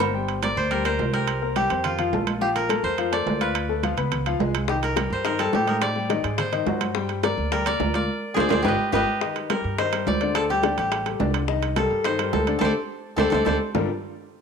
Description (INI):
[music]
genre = Afro-Cuban jazz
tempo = 212 BPM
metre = 4/4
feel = straight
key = G minor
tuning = A4 = 438 Hz
[part]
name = koto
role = melody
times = 0.0-13.6 s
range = F4 to A5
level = -25 LUFS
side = equal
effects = none
[part]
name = clear grand piano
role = accompaniment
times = 0.0-13.9 s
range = D3 to G6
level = -28 LUFS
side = left 10 dB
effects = none
[part]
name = upright bass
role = bass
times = 0.0-13.9 s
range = G1 to A2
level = -29 LUFS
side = right 2 dB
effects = none
[part]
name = agogo bells and timbales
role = percussion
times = 0.0-13.8 s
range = none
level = -29 LUFS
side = right 14 dB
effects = none
[part]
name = cowbell and bongos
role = percussion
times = 0.0-0.1, 4.7-13.8 s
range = none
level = -30 LUFS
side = left 11 dB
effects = none
[part]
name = congas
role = percussion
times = 0.1-13.8 s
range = none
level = -31 LUFS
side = right 2 dB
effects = none
[sound]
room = light reverb, studio ambience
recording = 1960s-style stereo with parts hard left and right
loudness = -21 LUFS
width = side -6 dB against mid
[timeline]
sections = 0.1-9.2 A section; 9.2-13.7 B section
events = band accent 8.1-9.2, 12.6-13.7; drum fill 8.5-9.2, 12.6-13.7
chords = 0.1 Gmadd11; 1.3 C5; 1.8 F; 2.4 Bbmaj9; 3.5 Dm; 4.1 C#7; 4.7 Cm7; 5.8 Ebmaj7#11; 6.4 Ab7; 7.0 Gm7; 8.1 Dm7b5; 8.7 Gaug7; 9.2 Cm7; 10.3 D7sus4; 11.5 Cm7; 12.6 D7sus4; 13.7 Gm9